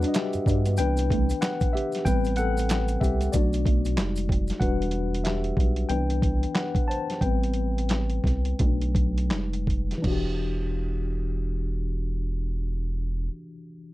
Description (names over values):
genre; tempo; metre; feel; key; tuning
R&B, neo-soul; 80-94 BPM; 4/4; swing 60% on 16ths; E minor; A4 = 440 Hz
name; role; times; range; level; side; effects
electric guitar through a small old amp; second line; 0.0-4.4 s; A3 to D4; -34 LUFS; right 3 dB; wide subtle chorus
tine electric piano; accompaniment; 0.0-13.9 s; E3 to A5; -29 LUFS; left 3 dB; medium stereo tremolo, low-pass filter
rubbery square bass; bass; 0.0-13.3 s; E1 to G2; -27 LUFS; equal; none
dusty soul sampler-style drum kit; drums; 0.0-10.3 s; crash cymbal, handclaps, hi-hat, kick drum, snare drum; -26 LUFS; equal; none
maracas and finger snaps; percussion; 0.0-4.6 s; none; -41 LUFS; right 2 dB; none
room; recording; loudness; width
little or no reverb; dark, warm production; -23 LUFS; side -17 dB against mid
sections
0.0-10.0 A section; 10.0-13.0 B section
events
tine electric piano solo 0.0-10.0; filter sweep on tine electric piano 0.0-10.0; slowing down 4.6-10.0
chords
0.0 Em9; 0.8 Cmaj9; 2.1 Am9; 3.3 Bm7; 4.0 Fm9; 4.6 Em9; 5.9 Cmaj9; 7.2 Am9; 8.6 Bm7; 9.3 Fm9; 10.0 Em9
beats
0.14 0.78 1.41 | 2.05 2.69 3.33 3.97 | 4.61 5.25 5.89 6.54 | 7.21 7.89 8.58 9.30 | 10.04 10.79 11.54 12.29